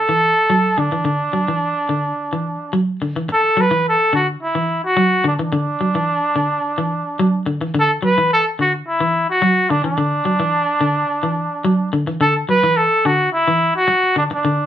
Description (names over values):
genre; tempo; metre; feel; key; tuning
afrobeat; 108 BPM; 4/4; straight; D major; A4 = 439 Hz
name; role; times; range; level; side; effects
breathy trumpet; melody; 0.0-14.7 s; D4 to B4; -16 LUFS; right 1 dB; none
semi-hollow electric guitar; arpeggios; 0.1-14.7 s; D3 to F#3; -19 LUFS; left 1 dB; none
room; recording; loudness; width
wet studio reverb, RT60 0.5 s; band playing live in one room; -15 LUFS; side -10 dB against mid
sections
0.0-3.3 A section; 3.3-14.7 B section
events
none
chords
0.0 D